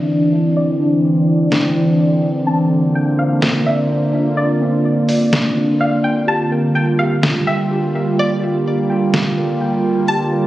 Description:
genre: hip hop, atmospheric cloud-rap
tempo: 126 BPM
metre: 4/4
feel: half-time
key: unclear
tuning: A4 = 440 Hz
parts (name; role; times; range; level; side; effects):
- string-like resonator pluck; melody; 0.0-10.5 s; D5 to A5; -22 LUFS; left 1 dB; chorus, phaser, low-pass filter, ping-pong delay
- warbly tape-like pad; sustained chords; 0.0-10.5 s; D3 to F4; -16 LUFS; right 1 dB; chorus, built-in reverb, low-pass filter
- muted felt-like synth keys; arpeggios; 0.0-10.5 s; E3 to G5; -21 LUFS; left 1 dB; chorus, low-pass filter, ping-pong delay
- trip hop sampler-style drum kit; drums; 1.5-9.2 s; hi-hat, snare drum; -19 LUFS; equal; none
room: light reverb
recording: recorded on a phone in the room, studio reverb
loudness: -14 LUFS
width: side -15 dB against mid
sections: 0.0-10.5 A section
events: filter sweep 0.0-10.5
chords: 0.0 D7sus2; 2.5 C9sus4/D; 6.3 Gm7/D

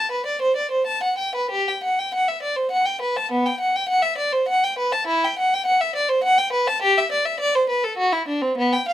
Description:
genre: classical, baroque-style suite movement for unaccompanied violin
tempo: 102 BPM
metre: 3/4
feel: uneven beats, rubato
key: unclear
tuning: A4 = 440 Hz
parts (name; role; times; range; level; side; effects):
- rich violin; solo; 0.0-8.9 s; B3 to A5; -19 LUFS; equal; none
room: light reverb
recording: none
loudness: -19 LUFS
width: side -12 dB against mid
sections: 0.0-1.5 A section; 1.5-8.9 B section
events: none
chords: none

